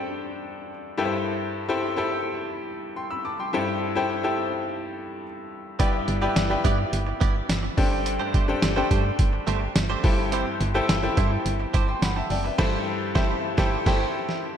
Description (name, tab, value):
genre	1980s-style pop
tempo	106 BPM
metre	4/4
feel	straight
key	unclear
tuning	A4 = 439 Hz
part	bright grand piano	accompaniment	0.0-14.6 s	G2 to E6	-26 LUFS	left 2 dB	none
part	direct-recorded clean electric guitar	riff	5.8-14.1 s	A3 to D5	-31 LUFS	right 6 dB	lush chorus, tape echo
part	solid FM bass	bass	5.8-14.1 s	F#1 to G2	-27 LUFS	right 1 dB	none
part	lo-fi sampler-style drum kit	drums	5.8-14.4 s	crash cymbal, hi-hat, kick drum, snare drum, tambourine	-25 LUFS	right 1 dB	none
room	moderate lush hall reverb, RT60 2.1 s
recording	dreamy mix soaked in reverb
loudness	-22 LUFS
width	side -9 dB against mid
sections	0.0-14.6 A section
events	band accent 12.6-14.6; drum fill 14.3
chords	0.0 D7sus4/G; 1.0 Am7/G; 5.8 G6; 7.8 D7sus4/G; 10.0 Am7/G; 12.6 C6/G